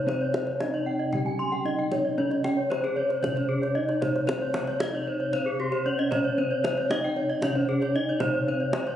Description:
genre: Balinese gamelan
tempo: 114 BPM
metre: 4/4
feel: straight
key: C pelog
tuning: A4 = 440 Hz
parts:
  - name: gamelan-type bronze metallophone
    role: melody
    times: 0.0-9.0 s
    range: C4 to G4-30c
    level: -31 LUFS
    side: equal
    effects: slapback echo
  - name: gamelan-type bronze metallophone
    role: accompaniment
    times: 0.0-9.0 s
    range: C3 to G3-30c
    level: -39 LUFS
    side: equal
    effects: none
  - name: gamelan-type bronze metallophone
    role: arpeggios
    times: 0.0-9.0 s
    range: Ab4-20c to Ab5-20c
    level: -30 LUFS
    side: right 1 dB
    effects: none
  - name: gamelan-type bossed gongs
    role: bass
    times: 0.0-9.0 s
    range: C2 to Db4+20c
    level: -32 LUFS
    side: equal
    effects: none
  - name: gamelan-type bronze metallophone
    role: arpeggios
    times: 0.1-8.9 s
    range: G4-30c to C6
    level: -30 LUFS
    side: left 3 dB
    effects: none
  - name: kendang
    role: percussion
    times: 0.1-8.9 s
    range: none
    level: -33 LUFS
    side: right 1 dB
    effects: none
room: wet recital hall reverb, RT60 1.3 s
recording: recorded on a phone in the room, club reverb, compression, nothing above 10.9 kHz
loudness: -24 LUFS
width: side -10 dB against mid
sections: 0.0-9.0 A section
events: none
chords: none

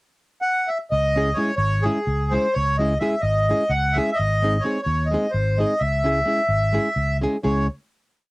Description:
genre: balkan folk, Balkan wedding band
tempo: 257 BPM (eighths)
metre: 7/8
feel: straight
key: C# harmonic minor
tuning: A4 = 441 Hz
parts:
  - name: accordion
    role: melody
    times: 0.4-7.7 s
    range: G#4 to F#5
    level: -22 LUFS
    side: equal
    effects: cassette tape
  - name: fingered electric bass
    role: bass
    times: 0.9-7.7 s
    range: G#1 to D#2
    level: -23 LUFS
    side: equal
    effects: transformer saturation
  - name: nylon-string guitar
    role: accompaniment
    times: 1.2-7.7 s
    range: G#3 to G#4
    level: -23 LUFS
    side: equal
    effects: cassette tape
room: light reverb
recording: home recording on cassette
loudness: -19 LUFS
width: side -23 dB against mid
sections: 0.0-0.9 pickup bar; 0.9-7.4 A section; 7.4-8.3 final chord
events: none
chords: 0.0 N.C.; 0.9 C#m; 4.2 G#; 5.8 C#m

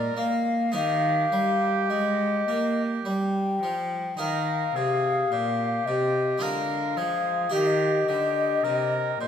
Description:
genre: classical, baroque-style sonata movement with continuo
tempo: 54 BPM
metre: 3/4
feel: straight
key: Eb major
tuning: A4 = 438 Hz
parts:
  - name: baroque flute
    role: melody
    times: 0.0-9.3 s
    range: D5 to G5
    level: -26 LUFS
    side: left 5 dB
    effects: none
  - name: clear oboe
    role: second line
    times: 0.0-9.3 s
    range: G4 to C5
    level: -30 LUFS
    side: right 6 dB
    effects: none
  - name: harpsichord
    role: accompaniment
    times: 0.0-9.3 s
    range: Bb2 to Bb4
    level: -30 LUFS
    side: equal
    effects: none
  - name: dark cello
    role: bass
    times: 0.0-9.3 s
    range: Bb2 to Bb3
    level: -29 LUFS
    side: right 3 dB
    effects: none
room: wet recital hall reverb, RT60 1.5 s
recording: minimal, uncompressed stereo recording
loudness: -23 LUFS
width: side -8 dB against mid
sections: 0.0-4.2 A section; 4.2-9.3 B section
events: none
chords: 0.0 Bb7; 0.7 Eb; 6.4 Bb7/D; 7.5 Eb

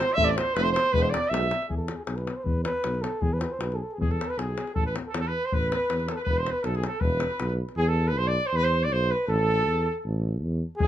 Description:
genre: balkan folk, Balkan brass band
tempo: 158 BPM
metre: 2/4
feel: straight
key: unclear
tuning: A4 = 440 Hz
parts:
  - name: dark cornet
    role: melody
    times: 0.0-10.9 s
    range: G#4 to E5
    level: -28 LUFS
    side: right 1 dB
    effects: plate reverb
  - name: clear trumpet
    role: second line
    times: 0.0-1.7, 4.0-10.9 s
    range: G#4 to E5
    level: -29 LUFS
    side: right 3 dB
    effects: none
  - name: davul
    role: percussion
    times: 0.0-7.7, 10.8-10.9 s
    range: none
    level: -30 LUFS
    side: left 2 dB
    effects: none
  - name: clear French horn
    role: accompaniment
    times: 0.2-1.5 s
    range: G#3 to A3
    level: -34 LUFS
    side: left 6 dB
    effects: none
  - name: clear trombone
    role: accompaniment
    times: 0.2-1.5 s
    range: B2 to C3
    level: -36 LUFS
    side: right 7 dB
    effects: none
  - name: mellow tuba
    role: bass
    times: 0.2-10.9 s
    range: E1 to E2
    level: -28 LUFS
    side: equal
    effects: none
room: light reverb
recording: close, detailed microphones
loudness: -24 LUFS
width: side -11 dB against mid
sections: 0.0-1.7 A section; 1.7-7.8 B section; 7.8-10.9 C section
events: none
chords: 0.2 Am; 0.9 E; 4.8 A5; 6.3 E5; 9.3 A5

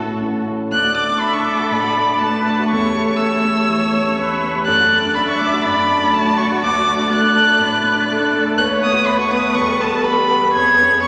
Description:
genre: quick classical-period movement for piano quintet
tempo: 122 BPM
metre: 4/4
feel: rubato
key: D major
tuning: A4 = 441 Hz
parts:
  - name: rich violin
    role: melody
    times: 0.0-11.1 s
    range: A4 to G#6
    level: -19 LUFS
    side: equal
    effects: none
  - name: rich violin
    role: second line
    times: 0.0-11.1 s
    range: F#4 to D5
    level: -27 LUFS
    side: equal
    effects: none
  - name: warm cello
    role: second line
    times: 0.0-11.1 s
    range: G3 to B3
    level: -26 LUFS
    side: equal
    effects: none
  - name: rich viola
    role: accompaniment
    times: 0.0-11.1 s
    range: F#4 to E5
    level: -26 LUFS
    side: equal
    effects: none
  - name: warm concert grand piano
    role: accompaniment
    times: 0.0-11.1 s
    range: A1 to B4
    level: -24 LUFS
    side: equal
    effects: none
room: wet church reverb, RT60 3.5 s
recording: none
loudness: -16 LUFS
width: mono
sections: 0.7-11.1 A section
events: none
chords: 0.0 A; 0.7 D; 2.7 A7/E; 4.7 D/F#; 6.6 D; 8.6 B7/D#; 9.6 Em; 10.5 C#7/E#

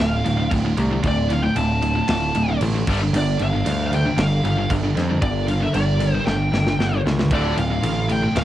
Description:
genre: heavy metal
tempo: 115 BPM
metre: 4/4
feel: straight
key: D minor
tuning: A4 = 440 Hz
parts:
  - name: high-gain lead guitar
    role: melody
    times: 0.0-8.4 s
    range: D5 to A5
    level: -26 LUFS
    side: equal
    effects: distortion, cassette tape, tape echo
  - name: warm studio string section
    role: sustained chords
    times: 0.0-8.4 s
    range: D3 to Bb4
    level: -35 LUFS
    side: equal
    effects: none
  - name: distorted electric guitar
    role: riff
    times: 0.0-8.4 s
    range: D2 to G3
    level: -26 LUFS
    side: left 6 dB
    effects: overdrive, cassette tape
  - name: heavy high-gain guitar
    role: riff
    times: 0.0-8.4 s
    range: D2 to G3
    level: -25 LUFS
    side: right 5 dB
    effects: distortion, cassette tape
  - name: overdriven picked electric bass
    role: bass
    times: 0.0-8.4 s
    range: D1 to F2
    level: -22 LUFS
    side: equal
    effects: none
  - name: tight metal drum kit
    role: drums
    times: 0.0-8.4 s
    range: crash cymbal, kick drum, snare drum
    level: -27 LUFS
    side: equal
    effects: cassette tape
room: small room ambience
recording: home recording on cassette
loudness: -18 LUFS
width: side -13 dB against mid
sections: 0.0-8.4 A section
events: half time 0.0-8.4; drum fill 6.3-7.3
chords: 0.0 Dm; 2.9 Gm; 7.3 Dm

